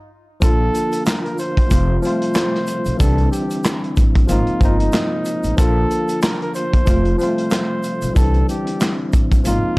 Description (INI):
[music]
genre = hip hop, boom-bap hip-hop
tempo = 93 BPM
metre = 4/4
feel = swing 56% on 16ths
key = F major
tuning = A4 = 440 Hz
[part]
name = trumpet with bucket mute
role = melody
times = 0.4-9.8 s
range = Eb4 to C5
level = -24 LUFS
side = right 1 dB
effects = high-pass filter, low-pass filter
[part]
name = barky tine electric piano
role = accompaniment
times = 0.4-9.8 s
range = E3 to F4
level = -22 LUFS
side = left 1 dB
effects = cassette tape, high-pass filter, low-pass filter
[part]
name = mellow tonewheel organ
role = sustained chords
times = 0.4-9.8 s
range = C3 to F4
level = -29 LUFS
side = equal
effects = chorus vibrato, fast rotary speaker, high-pass filter, low-pass filter
[part]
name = upright bass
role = bass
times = 0.4-9.7 s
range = F1 to C2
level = -19 LUFS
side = equal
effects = none
[part]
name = crunchy breakbeat drum kit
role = drums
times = 0.4-9.6 s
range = handclaps, hi-hat, kick drum, snare drum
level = -18 LUFS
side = equal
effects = none
[part]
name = tube shaker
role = percussion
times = 0.4-9.6 s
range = none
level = -37 LUFS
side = right 2 dB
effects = none
[sound]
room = small room reverb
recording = dry, gritty hardware recording, cassette tape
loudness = -15 LUFS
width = side -23 dB against mid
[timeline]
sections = 0.4-9.8 A section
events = break 0.0-0.4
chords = 0.4 Bb; 1.7 F; 3.0 Cadd9; 4.3 Ab6; 5.6 Bb; 6.9 F; 8.2 Cadd9